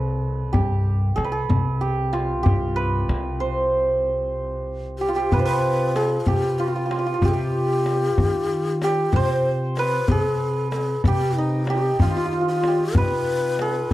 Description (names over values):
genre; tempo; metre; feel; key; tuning
Persian modal ensemble; 63 BPM (dotted quarters); 6/8; straight; C avaz esfahan; A4 = 440 Hz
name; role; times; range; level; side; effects
santur; melody; 0.0-13.9 s; Eb4 to D5; -24 LUFS; right 2 dB; none
upright bass; bass; 0.0-13.8 s; G2 to Eb3; -25 LUFS; equal; none
clear double bass; drone; 0.0-5.4 s; C2; -30 LUFS; equal; none
tombak; percussion; 0.5-13.9 s; none; -23 LUFS; left 1 dB; none
breathy low ney; second line; 5.0-13.9 s; Eb4 to C5; -25 LUFS; left 3 dB; none
room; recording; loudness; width
little or no reverb; dry, close 1970s-style studio recording; -19 LUFS; side -15 dB against mid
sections
0.0-5.3 A section; 5.3-13.9 B section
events
none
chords
none